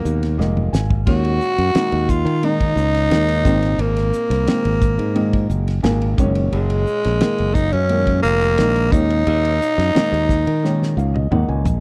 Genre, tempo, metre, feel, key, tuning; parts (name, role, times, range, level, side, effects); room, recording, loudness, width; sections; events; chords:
electric jazz fusion; 88 BPM; 4/4; straight; Eb minor; A4 = 440 Hz
growling tenor saxophone; melody; 0.0-11.3 s; Ab3 to Gb4; -22 LUFS; equal
warm concert grand piano; accompaniment; 0.0-11.8 s; Bb2 to Ab5; -26 LUFS; equal
modern bright fingered electric bass; bass; 0.1-11.8 s; F1 to Eb3; -22 LUFS; equal
damped 70s drum kit; drums; 0.1-11.8 s; crash cymbal, hi-hat, kick drum, ride cymbal, snare drum, toms; -23 LUFS; equal
small room ambience; dry, close 1970s-style studio recording; -18 LUFS; mono
0.0-11.8 A section
grand piano fill 0.0-1.1, 5.5-6.5, 10.6-11.8; drum fill 0.4-1.1, 10.6-11.8
0.0 Fm7b5; 1.1 Ebm7; 3.5 Abadd9; 6.2 Gbadd9; 8.9 Eb7(no3)